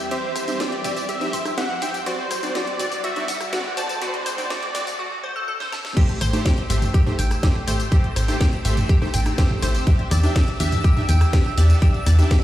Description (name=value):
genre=progressive house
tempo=123 BPM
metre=4/4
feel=straight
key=A dorian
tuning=A4 = 438 Hz
part: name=soft round pluck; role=second line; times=0.0-5.0 s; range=C5 to A5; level=-35 LUFS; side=equal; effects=none
part: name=shimmering ambient pad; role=sustained chords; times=0.0-12.4 s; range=D2 to F#5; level=-35 LUFS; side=equal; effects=chorus, built-in reverb, phaser, sidechain pumping
part: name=house drum kit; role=drums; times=0.0-12.4 s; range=crash cymbal, hi-hat, rim click, snare drum, tambourine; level=-30 LUFS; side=left 1 dB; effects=none
part: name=riser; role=sound effects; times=0.0-5.0 s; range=none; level=-39 LUFS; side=right 1 dB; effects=none
part: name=wide unison lead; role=melody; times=0.1-5.0 s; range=C5 to A5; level=-29 LUFS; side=equal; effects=tape echo
part: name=glassy wavetable pluck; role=arpeggios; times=0.1-12.4 s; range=F#4 to G6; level=-30 LUFS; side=equal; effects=chorus, phaser, sidechain pumping, tape echo
part: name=supersaw stab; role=stabs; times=0.1-12.4 s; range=A3 to E5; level=-29 LUFS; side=right 1 dB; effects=sidechain pumping, tape echo
part: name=electronic congas and toms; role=percussion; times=0.5-12.3 s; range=none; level=-29 LUFS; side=right 1 dB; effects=sidechain pumping on perc, sidechain pumping on toms
part: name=electronic kick drum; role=drums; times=6.0-12.4 s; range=none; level=-18 LUFS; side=equal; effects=none
part: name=twinkling granular texture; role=texture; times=6.4-12.4 s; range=E6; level=-35 LUFS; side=equal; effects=built-in reverb, sidechain pumping
part: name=plucky analog bass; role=bass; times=6.2-12.2 s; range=A1 to E2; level=-18 LUFS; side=equal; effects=sidechain pumping
room=moderate lush hall reverb, RT60 1.9 s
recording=played on a big sound system in a bare room, stone room reverb, high-pass filter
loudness=-18 LUFS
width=side -13 dB against mid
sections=0.0-6.0 A section; 6.0-12.4 B section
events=build-up 0.0-6.0; riser 0.0-5.0; break 5.0-6.0; drum fill 5.6-6.0; drop 6.0-12.4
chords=0.0 C/E; 2.1 D7; 6.0 Am7; 9.9 Em7